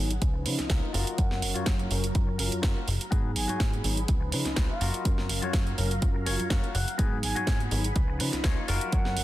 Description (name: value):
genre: filtered disco house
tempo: 124 BPM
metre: 4/4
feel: swing 54% on 16ths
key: F# major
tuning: A4 = 440 Hz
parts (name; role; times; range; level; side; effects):
- tine electric piano; accompaniment; 0.0-9.2 s; E#3 to E#5; -35 LUFS; left 1 dB; overdrive, phaser, vintage 12-bit sampler grit, sidechain pumping, low-pass filter
- string machine, full ensemble; sustained chords; 0.0-9.2 s; F#3 to E#6; -40 LUFS; equal; ensemble chorus, vintage 12-bit sampler grit, sidechain pumping, low-pass filter
- plucky analog bass; bass; 0.0-9.2 s; F#1 to C#3; -31 LUFS; equal; sidechain pumping, low-pass filter
- house drum kit; drums; 0.1-9.2 s; hi-hat, snare drum; -32 LUFS; right 2 dB; sidechain pumping on hats
- electronic kick drum; drums; 0.2-9.0 s; none; -26 LUFS; equal; none
- semi-hollow electric guitar; riff; 0.3-9.2 s; D#4 to F#5; -37 LUFS; left 6 dB; sidechain pumping, low-pass filter
- breathy jazz flute; melody; 1.2-9.2 s; E#5 to G#5; -39 LUFS; right 2 dB; vintage 12-bit sampler grit, sidechain pumping, low-pass filter, digital delay
room: little or no reverb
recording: dense, heavily limited modern master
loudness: -25 LUFS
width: side -15 dB against mid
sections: 0.0-9.2 A section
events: filter sweep 0.0-9.2; clean electric guitar fill 6.0-7.0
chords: 0.2 C#9; 0.9 F#maj7; 3.1 G#m7; 4.1 C#9; 4.8 F#maj7; 7.0 G#m7; 8.0 C#9; 8.7 F#maj7